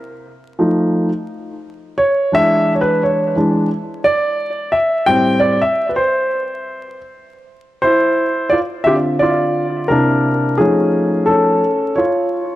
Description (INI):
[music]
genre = hip hop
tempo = 87 BPM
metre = 4/4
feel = swing 62% on 16ths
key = D minor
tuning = A4 = 440 Hz
[part]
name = dark baby grand piano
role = solo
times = 0.6-12.6 s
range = A2 to G5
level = -14 LUFS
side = equal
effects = tape echo
[sound]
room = light reverb, studio reverb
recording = vinyl crackle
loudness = -13 LUFS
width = side -15 dB against mid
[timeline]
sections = 0.0-7.8 A section; 7.8-12.6 B section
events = grand piano solo 0.0-7.8, 7.8-12.6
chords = 0.0 Faug7; 2.3 E7; 5.1 Am7; 7.8 Dm9; 9.9 C9; 10.6 F7alt